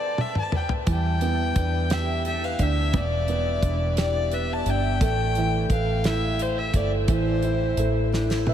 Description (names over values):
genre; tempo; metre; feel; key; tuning
six-eight pop ballad; 58 BPM (dotted quarters); 6/8; straight; unclear; A4 = 440 Hz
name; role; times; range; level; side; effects
warm violin; melody; 0.0-8.1 s; C5 to A5; -28 LUFS; left 3 dB; analog delay
warm grand piano; accompaniment; 0.0-8.5 s; B2 to E5; -28 LUFS; right 5 dB; lush chorus
damped 70s drum kit; drums; 0.2-8.5 s; hi-hat, kick drum, snare drum, toms; -26 LUFS; equal; none
picked steel-string acoustic guitar; arpeggios; 0.9-8.5 s; G3 to B4; -34 LUFS; left 2 dB; lush chorus
vintage muted fingered electric bass; bass; 0.9-8.5 s; E1 to E2; -25 LUFS; equal; none
room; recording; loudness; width
moderate huge ambient reverb, RT60 8.7 s; dreamy mix soaked in reverb; -21 LUFS; side -10 dB against mid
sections
0.0-8.5 A section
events
drum fill 0.0-0.9, 8.1-8.5; grand piano fill 8.1-8.5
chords
0.0 Amadd9/C; 0.9 Em7; 5.0 Amadd9